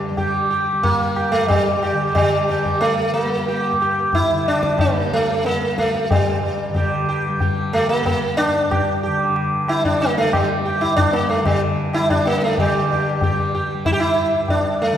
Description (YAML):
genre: indian classical, Hindustani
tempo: 92 BPM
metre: 5/4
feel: straight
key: G raga shivaranjani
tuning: A4 = 438 Hz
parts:
  - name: sitar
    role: melody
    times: 0.0-15.0 s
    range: G3 to G4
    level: -18 LUFS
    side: right 1 dB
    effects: none
  - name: tanpura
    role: drone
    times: 0.0-15.0 s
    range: G2 to G3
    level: -26 LUFS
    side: left 1 dB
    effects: none
  - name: tabla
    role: percussion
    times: 0.2-14.7 s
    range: none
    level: -24 LUFS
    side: left 2 dB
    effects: none
room: wet concert hall reverb, RT60 2.2 s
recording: recorded in a church or concert hall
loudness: -16 LUFS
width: side -10 dB against mid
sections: 0.0-12.6 A section; 12.6-15.0 B section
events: speeding up 0.0-15.0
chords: none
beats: 0.17 0.84 1.50 2.16 | 2.82 3.48 4.14 4.80 5.46 | 6.11 6.76 7.42 8.07 8.72 | 9.36 10.01 10.66 11.30 11.94 | 12.58 13.22 13.86 14.50